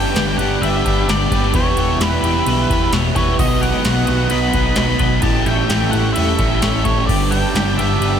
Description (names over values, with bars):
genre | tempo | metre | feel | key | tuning
rock, shoegaze and dream pop | 130 BPM | 4/4 | straight | G lydian | A4 = 440 Hz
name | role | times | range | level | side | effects
octave-fuzz lead guitar | melody | 0.0-8.2 s | B4 to B5 | -23 LUFS | equal | distortion, digital delay
chorused pulse-width pad | sustained chords | 0.0-8.2 s | A4 to E6 | -26 LUFS | left 1 dB | none
twelve-string electric guitar | arpeggios | 0.0-8.2 s | F#4 to D#5 | -28 LUFS | left 9 dB | analog chorus, digital delay
biting overdriven guitar | riff | 0.0-8.2 s | G2 to G4 | -21 LUFS | right 14 dB | reverse reverb
thick fuzz guitar | riff | 0.0-8.2 s | E2 to B3 | -22 LUFS | left 11 dB | distortion, ensemble chorus
overdriven picked electric bass | bass | 0.2-8.2 s | E1 to B1 | -21 LUFS | equal | none
booming analog drum machine | drums | 0.2-8.1 s | crash cymbal, kick drum, ride cymbal, snare drum | -21 LUFS | equal | none
room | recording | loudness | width
light reverb, digital ambience | none | -14 LUFS | side -8 dB against mid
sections
0.0-8.2 A section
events
none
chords
0.0 Gadd9; 1.5 Em; 3.4 B; 5.2 A7; 7.1 Gadd9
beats
0.16 0.62 1.08 | 1.54 2.01 2.47 2.93 | 3.39 3.85 4.32 4.78 | 5.24 5.71 6.17 6.63 | 7.09 7.56 8.02